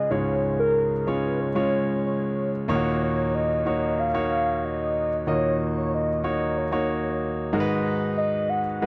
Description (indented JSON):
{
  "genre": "pop",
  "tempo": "93 BPM",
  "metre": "4/4",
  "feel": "straight",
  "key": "Eb minor",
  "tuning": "A4 = 436 Hz",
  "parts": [
    { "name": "warm velvety synth lead", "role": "melody", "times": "0.0-8.9 s", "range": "Bb4 to Gb5", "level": "-29 LUFS", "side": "equal", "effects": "chorus, tremolo" },
    { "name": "warm concert grand piano", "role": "accompaniment", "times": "0.0-8.9 s", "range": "Db2 to Eb5", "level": "-27 LUFS", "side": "equal", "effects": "none" }
  ],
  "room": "light reverb",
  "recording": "dry, close 1970s-style studio recording",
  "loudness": "-25 LUFS",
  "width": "mono",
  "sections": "0.0-8.9 A section",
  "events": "none",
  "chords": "0.0 Db7; 2.7 Ebm7; 7.5 Abm7"
}